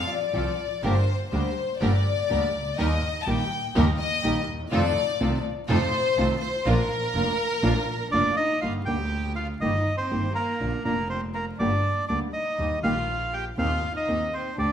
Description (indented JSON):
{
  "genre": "tango",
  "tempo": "122 BPM",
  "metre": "4/4",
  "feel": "rubato",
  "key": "Bb major, G minor from 8.6 s",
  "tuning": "A4 = 439 Hz",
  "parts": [
    { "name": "warm chamber violin section", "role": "second line", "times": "0.0-14.7 s", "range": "Bb3 to A5", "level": "-28 LUFS", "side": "left 3 dB", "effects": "none" },
    { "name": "rich studio string section", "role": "stabs", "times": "0.0-8.3 s", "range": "D4 to Bb4", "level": "-35 LUFS", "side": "right 2 dB", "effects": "none" },
    { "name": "clear double bass", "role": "bass", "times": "0.0-14.7 s", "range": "F1 to F2", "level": "-28 LUFS", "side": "equal", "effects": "none" },
    { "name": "nylon-string guitar", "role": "accompaniment", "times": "0.3-14.7 s", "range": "C3 to G4", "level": "-28 LUFS", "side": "right 1 dB", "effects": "none" },
    { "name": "bandoneon", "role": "melody", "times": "8.1-14.7 s", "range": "Bb4 to G5", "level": "-27 LUFS", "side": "right 1 dB", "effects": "none" }
  ],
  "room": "wet large studio reverb, RT60 1.4 s",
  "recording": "minimal, uncompressed stereo recording, vinyl crackle",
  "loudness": "-23 LUFS",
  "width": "side -9 dB against mid",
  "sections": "0.0-8.6 A section; 8.6-14.7 B section",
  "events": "violin section solo 0.0-8.6",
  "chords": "0.0 Fadd9; 0.8 Gm; 2.8 Eb; 4.7 F7; 6.7 Bb; 8.6 Gm; 9.6 Eb/G; 10.6 Bb; 11.6 Gm; 12.6 Eb; 13.6 Cm7/Eb",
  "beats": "0.34 | 0.83 1.32 1.81 2.30 | 2.78 3.26 3.75 4.23 | 4.71 5.20 5.68 6.17 | 6.66 7.14 7.63 8.13 | 8.63 9.12 9.62 10.12 | 10.61 11.10 11.60 12.09 | 12.58 13.08 13.58 14.08 | 14.57"
}